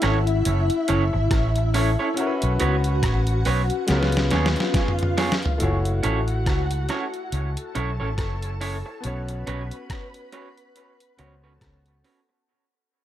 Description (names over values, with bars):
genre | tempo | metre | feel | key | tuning
lovers rock reggae | 70 BPM | 4/4 | swing 58% on 16ths | F# minor | A4 = 440 Hz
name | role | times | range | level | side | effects
soft string machine | second line | 0.0-12.4 s | E4 to B5 | -29 LUFS | left 2 dB | ensemble chorus
clear baby grand piano | accompaniment | 0.0-12.5 s | G#3 to C#5 | -30 LUFS | left 2 dB | dub echo
electric guitar through a small old amp | stabs | 0.0-12.3 s | B3 to C#5 | -29 LUFS | right 4 dB | dub echo
fretless electric bass | bass | 0.0-12.0 s | F#1 to D#2 | -23 LUFS | equal | none
detuned 8-bit digital drum machine | drums | 0.0-12.3 s | hi-hat, kick drum, rim click, snare drum, toms | -25 LUFS | equal | none
room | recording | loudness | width
little or no reverb | none | -20 LUFS | side -12 dB against mid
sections
0.0-5.6 A section; 5.6-12.5 B section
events
drum fill 3.9-5.6; fade-out 5.6-12.5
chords
0.0 F#m7; 2.2 Bsus2; 3.9 C#7; 5.6 F#m7; 9.0 Bsus2